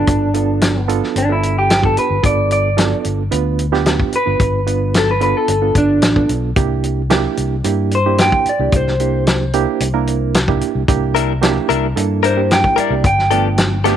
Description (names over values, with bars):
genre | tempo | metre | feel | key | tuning
straight-eighth soul blues | 111 BPM | 4/4 | straight | G mixolydian | A4 = 440 Hz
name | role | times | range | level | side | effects
electric guitar through a small old amp | melody | 0.0-14.0 s | D4 to G5 | -17 LUFS | equal | spring reverb
barky reed electric piano | accompaniment | 0.0-14.0 s | A3 to B4 | -20 LUFS | right 12 dB | fast tremolo
fingered electric bass | bass | 0.0-14.0 s | G1 to G2 | -19 LUFS | left 1 dB | none
warm soul drum kit | drums | 0.1-14.0 s | hi-hat, kick drum, snare drum | -18 LUFS | left 1 dB | none
direct-recorded clean electric guitar | stabs | 11.1-14.0 s | F3 to Bb4 | -19 LUFS | left 13 dB | none
room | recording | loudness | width
light reverb, studio ambience | 1960s-style stereo with parts hard left and right | -13 LUFS | side -10 dB against mid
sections
0.0-14.0 A section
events
clean electric guitar solo 0.0-14.0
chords
0.0 G9; 6.6 C9; 13.0 G9